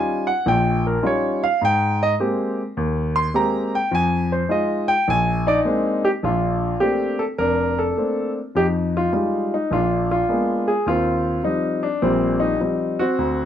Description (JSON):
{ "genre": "solo jazz", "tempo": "104 BPM", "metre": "4/4", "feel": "swing 67% on 8ths", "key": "Eb major, Bb major from 6.2 s", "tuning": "A4 = 440 Hz", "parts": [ { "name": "warm grand piano", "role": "solo", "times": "0.0-13.5 s", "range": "F1 to C6", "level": "-18 LUFS", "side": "equal", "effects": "none" } ], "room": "moderate club reverb, RT60 0.6 s", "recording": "none", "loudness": "-18 LUFS", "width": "side -10 dB against mid", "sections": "0.0-6.2 A section; 6.2-13.5 B section", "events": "grand piano solo 0.0-6.2", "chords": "0.0 Eb9; 1.6 Abmaj9; 3.9 Fm7; 5.1 Bb9; 6.2 Bbmaj9; 8.5 Fm9; 9.7 Bb7b9; 10.9 Eb69" }